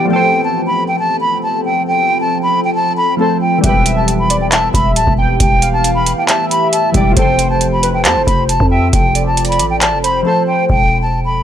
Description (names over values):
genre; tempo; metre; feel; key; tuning
hip hop, trap; 136 BPM; 4/4; half-time; unclear; A4 = 440 Hz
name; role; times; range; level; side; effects
silver concert flute; melody; 0.0-11.4 s; G5 to B5; -15 LUFS; equal; low-pass filter, digital delay
glassy digital keys; accompaniment; 0.0-10.7 s; E3 to D5; -20 LUFS; left 2 dB; chorus, low-pass filter
deep dark ambient pad; sustained chords; 0.0-10.7 s; E3 to A4; -21 LUFS; right 1 dB; chorus, built-in reverb
warm velvety synth lead; second line; 3.6-10.7 s; B4 to G5; -20 LUFS; right 1 dB; chorus, digital delay
growling 808-style bass; bass; 3.6-11.4 s; D1 to F2; -17 LUFS; equal; none
booming analog drum machine; drums; 3.6-10.9 s; handclaps, hi-hat, kick drum; -15 LUFS; equal; none
room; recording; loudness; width
light reverb; none; -11 LUFS; side -10 dB against mid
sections
0.0-10.7 A section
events
drums muted 10.3-10.7; hi-hats muted 10.7-11.4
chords
0.1 F; 3.6 Em; 7.2 F; 10.7 G69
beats
| 0.11 0.55 0.99 1.43 | 1.87 2.31 2.75 3.20 | 3.64 4.08 4.52 4.96 | 5.40 5.84 6.29 6.73 | 7.17 7.61 8.05 8.49 | 8.93 9.37 9.81 10.26 | 10.70 11.14